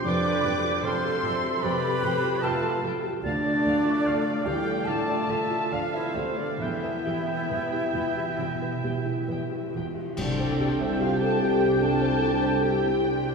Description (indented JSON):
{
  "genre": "cinematic, emotional film score for orchestra",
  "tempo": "66-76 BPM",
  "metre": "4/4",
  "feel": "rubato",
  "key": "C major",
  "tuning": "A4 = 441 Hz",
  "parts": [
    { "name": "bright alto flute", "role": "melody", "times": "0.0-9.7 s", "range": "C4 to D5", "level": "-30 LUFS", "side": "right 1 dB", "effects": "none" },
    { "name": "clear oboe", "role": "second line", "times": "0.0-13.3 s", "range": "C5 to A5", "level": "-35 LUFS", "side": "right 2 dB", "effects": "none" },
    { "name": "muted studio violin section", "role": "second line", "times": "0.0-13.3 s", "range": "C5 to D6", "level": "-34 LUFS", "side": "left 2 dB", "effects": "none" },
    { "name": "silver concert flute", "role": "second line", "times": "0.0-13.3 s", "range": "C5 to D6", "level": "-34 LUFS", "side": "equal", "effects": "none" },
    { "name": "felt-muted upright piano", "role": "accompaniment", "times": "0.0-13.3 s", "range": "C2 to D5", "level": "-31 LUFS", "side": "equal", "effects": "none" },
    { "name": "muted studio viola section", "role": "accompaniment", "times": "0.0-13.3 s", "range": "E3 to B4", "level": "-33 LUFS", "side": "right 2 dB", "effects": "none" },
    { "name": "muted studio double bass section", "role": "bass", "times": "0.0-13.3 s", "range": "E1 to D2", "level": "-35 LUFS", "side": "right 2 dB", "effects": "none" },
    { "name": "muted studio violin section", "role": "melody", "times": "0.1-13.3 s", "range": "F5 to G5", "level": "-40 LUFS", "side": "equal", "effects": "none" },
    { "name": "mellow French horn section", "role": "sustained chords", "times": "0.1-13.3 s", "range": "C3 to A4", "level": "-31 LUFS", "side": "left 2 dB", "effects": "none" },
    { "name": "muted chamber cello section", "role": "bass", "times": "0.1-13.3 s", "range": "C2 to F2", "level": "-33 LUFS", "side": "right 3 dB", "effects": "none" },
    { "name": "cymbal swell, clash cymbals and concert bass drum", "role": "percussion", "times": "6.6-11.8 s", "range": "none", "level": "-40 LUFS", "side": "equal", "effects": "none" },
    { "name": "dark clarinet", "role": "second line", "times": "10.2-13.3 s", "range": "C5", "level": "-37 LUFS", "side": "equal", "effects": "none" }
  ],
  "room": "wet church reverb, RT60 2.8 s",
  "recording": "studio reverb",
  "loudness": "-23 LUFS",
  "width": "side -5 dB against mid",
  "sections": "0.0-10.2 A section; 10.2-13.3 B section",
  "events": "band accent 10.2-11.0",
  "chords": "0.1 Fadd9; 3.2 Dm; 6.6 Em; 10.2 Csus2",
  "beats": "| 0.06 0.85 1.64 2.44 | 3.25 4.06 4.88 5.73 | 6.62 7.50 8.39 9.29 | 10.18 11.01 11.82 12.63"
}